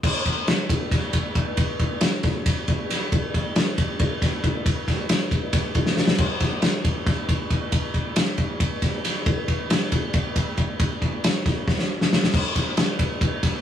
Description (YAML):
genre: rock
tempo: 273 BPM (eighths)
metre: 7/8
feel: straight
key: none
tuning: none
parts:
  - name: loose indie drum kit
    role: drums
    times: 0.0-13.5 s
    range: crash cymbal, kick drum, ride cymbal, snare drum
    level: -21 LUFS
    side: equal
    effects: none
room: wet small room reverb, RT60 0.5 s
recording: rough rehearsal-room recording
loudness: -21 LUFS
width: side -10 dB against mid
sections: 0.0-12.3 A section; 12.3-13.6 B section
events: drum fill 5.9-6.2, 11.7-12.3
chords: none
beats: | 0.04 0.26 0.48 0.70 0.92 1.14 1.36 | 1.58 1.80 2.02 2.24 2.46 2.68 2.90 | 3.12 3.34 3.56 3.78 4.00 4.21 4.43 | 4.65 4.87 5.09 5.31 5.53 5.75 5.97 | 6.19 6.41 6.63 6.85 7.07 7.29 7.51 | 7.73 7.95 8.17 8.39 8.61 8.82 9.04 | 9.26 9.48 9.70 9.92 10.14 10.36 10.58 | 10.80 11.02 11.24 11.46 11.68 11.89 12.11 | 12.33 12.55 12.77 12.99 13.21 13.43